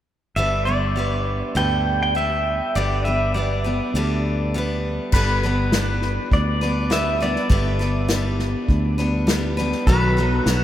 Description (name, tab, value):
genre	honky-tonk and classic country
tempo	101 BPM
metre	4/4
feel	straight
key	G major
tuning	A4 = 440 Hz
part	pedal steel guitar	melody	0.4-10.6 s	B4 to G5	-24 LUFS	right 1 dB	none
part	picked steel-string acoustic guitar	accompaniment	0.4-10.6 s	G2 to B4	-25 LUFS	left 1 dB	none
part	fingered electric bass	bass	0.4-10.6 s	G1 to D2	-22 LUFS	equal	none
part	unplugged drum kit	drums	5.1-10.6 s	crash cymbal, hi-hat, kick drum, snare drum	-23 LUFS	equal	none
room	moderate cathedral reverb, RT60 5.2 s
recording	in a vast, echoing space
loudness	-18 LUFS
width	side -12 dB against mid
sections	0.4-5.1 A section; 5.1-10.6 B section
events	none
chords	0.4 G; 9.9 B7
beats	| 0.37 0.96 1.56 2.15 | 2.75 3.34 3.94 4.53 | 5.12 5.72 6.31 6.91 | 7.50 8.10 8.69 9.28 | 9.88 10.47